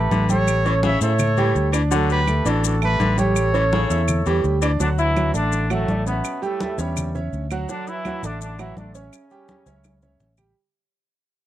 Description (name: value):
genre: latin, salsa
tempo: 167 BPM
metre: 4/4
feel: straight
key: D major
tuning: A4 = 441 Hz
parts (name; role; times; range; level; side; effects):
- mellow trumpet section; melody; 0.0-4.6 s; F#4 to E5; -23 LUFS; equal; none
- clear grand piano; accompaniment; 0.0-10.5 s; F#3 to E6; -25 LUFS; right 5 dB; none
- fingered electric bass; bass; 0.0-10.5 s; A1 to A2; -22 LUFS; left 1 dB; none
- bright baritone saxophone; second line; 0.1-4.7 s; C#3 to E3; -27 LUFS; left 10 dB; none
- congas; percussion; 0.1-10.5 s; none; -28 LUFS; left 1 dB; none
- maracas; percussion; 0.1-10.6 s; none; -33 LUFS; left 20 dB; none
- claves; percussion; 0.5-10.6 s; none; -33 LUFS; right 14 dB; none
- brilliant trombone section; melody; 4.8-10.4 s; G2 to E4; -26 LUFS; left 1 dB; none
room: small room ambience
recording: dry, close 1970s-style studio recording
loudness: -18 LUFS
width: side -12 dB against mid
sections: 0.0-4.8 A section; 4.8-10.6 B section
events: fade-out 4.8-10.6; drum fill 9.7-10.6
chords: 0.5 A7; 1.9 D; 3.4 A7; 4.8 D; 6.2 A7; 7.7 D; 9.1 A7